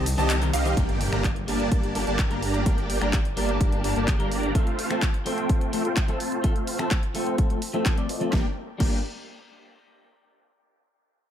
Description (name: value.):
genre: EDM, festival progressive house.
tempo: 127 BPM.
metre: 4/4.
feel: straight.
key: G minor.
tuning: A4 = 439 Hz.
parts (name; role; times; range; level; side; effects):
electric guitar at the edge of break-up; accompaniment; 0.0-9.0 s; Eb3 to D5; -31 LUFS; left 3 dB; spring reverb, sidechain pumping, dub echo.
warm baby grand piano; arpeggios; 0.0-0.7 s; F5 to A5; -34 LUFS; right 5 dB; sidechain pumping, dub echo.
supersaw chords; riff; 0.0-9.0 s; A3 to Bb5; -28 LUFS; right 1 dB; ensemble chorus, sidechain pumping, low-pass filter, dub echo.
detuned saw bass; bass; 0.0-4.5, 8.3-9.0 s; G1 to C2; -28 LUFS; equal; sidechain pumping.
big-room dance drum kit; drums; 0.1-8.9 s; crash cymbal, finger snaps, handclaps, hi-hat, ride cymbal, shaker, snare drum; -32 LUFS; equal; overdrive, studio ambience.
electronic kick drum; drums; 0.8-8.9 s; none; -24 LUFS; equal; overdrive, studio ambience.
impact; sound effects; 0.8-2.7 s; none; -34 LUFS; equal; none.
room: light reverb.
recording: none.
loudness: -22 LUFS.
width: side -10 dB against mid.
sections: 0.8-8.3 A section; 8.3-10.2 B section.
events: kick drops out 0.3-0.8; band accent 0.3; impact 0.8-2.7; filter sweep on supersaw synth 0.8-8.3.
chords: 0.0 Cm; 0.8 Gm; 4.6 F; 8.3 Gm.